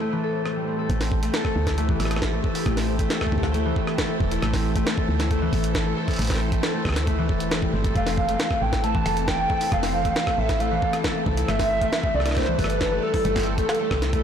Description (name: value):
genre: IDM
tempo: 136 BPM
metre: 4/4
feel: straight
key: A minor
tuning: A4 = 440 Hz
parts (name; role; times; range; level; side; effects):
- soft string machine; sustained chords; 0.0-14.2 s; A2 to D5; -32 LUFS; right 2 dB; phaser, ensemble chorus, vintage 12-bit sampler grit
- concert harp; arpeggios; 0.0-14.2 s; E3 to A4; -27 LUFS; left 4 dB; digital delay
- jungle sampler-style drum kit; drums; 0.5-14.2 s; hi-hat, rim click, snare drum; -29 LUFS; right 1 dB; studio reverb, ping-pong delay
- woody FM bass; bass; 0.9-14.2 s; E1 to D2; -26 LUFS; right 1 dB; none
- electronic kick drum; drums; 0.9-14.2 s; none; -27 LUFS; right 1 dB; studio reverb
- warbly nostalgic lead; melody; 8.0-14.2 s; A4 to A5; -25 LUFS; right 2 dB; ensemble chorus, cassette tape, ping-pong delay
room: light reverb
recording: blown-out, overdriven recording, overdrive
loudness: -21 LUFS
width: side -8 dB against mid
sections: 0.9-14.2 A section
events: none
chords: 0.0 Am7; 8.0 Fmaj7; 11.5 Gsus2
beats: 0.01 0.46 | 0.90 1.34 1.78 2.22 | 2.66 3.10 3.54 3.98 | 4.42 4.87 5.31 5.75 | 6.19 6.63 7.07 7.51 | 7.96 8.40 8.84 9.28 | 9.72 10.16 10.60 11.04 | 11.48 11.93 12.37 12.81 | 13.25 13.69 14.13